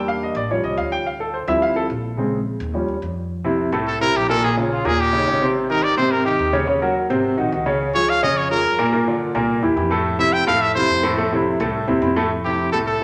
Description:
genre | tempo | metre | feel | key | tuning
Afro-Cuban jazz | 213 BPM | 4/4 | straight | F major | A4 = 440 Hz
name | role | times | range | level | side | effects
warm grand piano | accompaniment | 0.0-13.0 s | A2 to G5 | -22 LUFS | equal | none
upright bass | bass | 0.0-13.0 s | Ab1 to Ab2 | -32 LUFS | equal | none
brilliant trumpet | melody | 3.9-13.0 s | C4 to G5 | -22 LUFS | equal | none
room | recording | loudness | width
wet large studio reverb, RT60 1.4 s | none | -20 LUFS | mono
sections
0.0-3.3 A section; 3.3-12.3 A section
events
grand piano solo 0.0-3.3; trumpet solo 3.3-12.3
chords
0.0 Em7b5; 0.5 A7alt; 1.1 Dm11; 2.2 Bbm7; 2.7 Eb9; 3.3 Fmaj7; 4.4 Bbm; 5.0 Eb7; 5.6 Abmaj7; 6.7 Ab7; 7.8 Db6; 8.9 Gm7; 9.5 C7; 10.1 Fmaj7

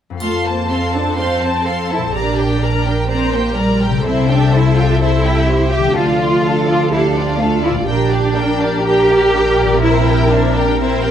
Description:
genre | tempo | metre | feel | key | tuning
classical, dramatic, fast romantic movement for symphony orchestra | 125 BPM | 4/4 | rubato | F major | A4 = 440 Hz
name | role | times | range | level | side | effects
concert harp | arpeggios | 0.1-11.1 s | F2 to F5 | -21 LUFS | left 7 dB | none
warm symphonic violin section | melody | 0.2-11.1 s | D5 to C6 | -25 LUFS | left 4 dB | none
rich studio violin section | second line | 0.2-11.1 s | D4 to A5 | -22 LUFS | left 1 dB | none
dark studio viola section | accompaniment | 0.2-11.1 s | F4 to C5 | -21 LUFS | right 1 dB | none
dark symphonic cello section | bass | 0.2-11.1 s | G3 to G4 | -18 LUFS | right 1 dB | none
rich symphonic double bass section | bass | 0.2-11.1 s | Bb1 to F2 | -19 LUFS | right 3 dB | none
triangle | percussion | 0.2-1.1 s | none | -40 LUFS | left 2 dB | none
room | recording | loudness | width
moderate scoring stage reverb, RT60 1.9 s | none | -13 LUFS | side -9 dB against mid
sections
0.2-11.1 A section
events
none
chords
0.2 F; 2.2 Gm/Bb; 4.1 C; 6.0 Dm; 7.9 Gm/Bb; 9.8 C7/Bb

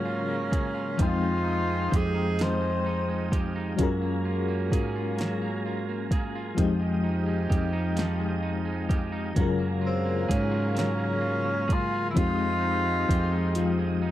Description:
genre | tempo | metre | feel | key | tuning
slow six-eight R&B | 43 BPM (dotted quarters) | 6/8 | straight | unclear | A4 = 442 Hz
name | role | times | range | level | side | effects
breathy tenor saxophone | melody | 0.0-3.5, 9.9-14.0 s | C4 to C5 | -30 LUFS | left 1 dB | tape echo
electric guitar at the edge of break-up | second line | 0.0-14.1 s | F3 to Ab4 | -35 LUFS | right 4 dB | vibrato effect
FM electric piano with tremolo | accompaniment | 0.0-14.1 s | Db3 to G5 | -32 LUFS | left 6 dB | none
tonewheel organ | sustained chords | 0.0-14.1 s | Ab3 to Eb6 | -38 LUFS | right 1 dB | chorus vibrato, slow rotary speaker
warm horn section | stabs | 0.0-14.1 s | Db3 to G4 | -36 LUFS | right 5 dB | none
mellow fretless electric bass | bass | 0.0-14.1 s | F2 to Ab2 | -29 LUFS | equal | none
smooth R&B drum kit | drums | 0.5-13.8 s | hi-hat, kick drum, snare drum | -27 LUFS | equal | none
room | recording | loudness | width
digital ambience | dry, close 1970s-style studio recording | -24 LUFS | side -13 dB against mid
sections
0.0-14.1 A section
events
drum fill 13.6-14.1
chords
0.0 Gbmaj9; 1.0 Fm9; 3.8 Gbmaj9; 6.6 Fm9; 9.4 Gbmaj9; 12.2 Fm9

